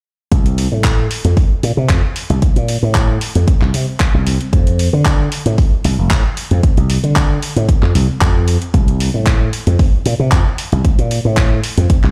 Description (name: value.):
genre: nu-disco, nu disco.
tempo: 114 BPM.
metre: 4/4.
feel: straight.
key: unclear.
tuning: A4 = 440 Hz.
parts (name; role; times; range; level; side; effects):
slap bass with an envelope filter; bass; 0.3-12.1 s; F1 to D3; -16 LUFS; equal; sidechain pumping.
electronic kick drum; drums; 0.3-12.0 s; none; -16 LUFS; equal; none.
house drum kit; drums; 0.3-12.1 s; handclaps, hi-hat; -25 LUFS; equal; none.
room: little or no reverb.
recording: played on a big sound system in a bare room, stone room reverb.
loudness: -14 LUFS.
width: mono.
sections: 0.3-12.1 A section.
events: none.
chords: none.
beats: | 0.32 0.84 1.37 1.90 | 2.42 2.95 3.48 4.00 | 4.53 5.05 5.58 6.11 | 6.63 7.16 7.69 8.21 | 8.74 9.27 9.79 10.32 | 10.85 11.37 11.90.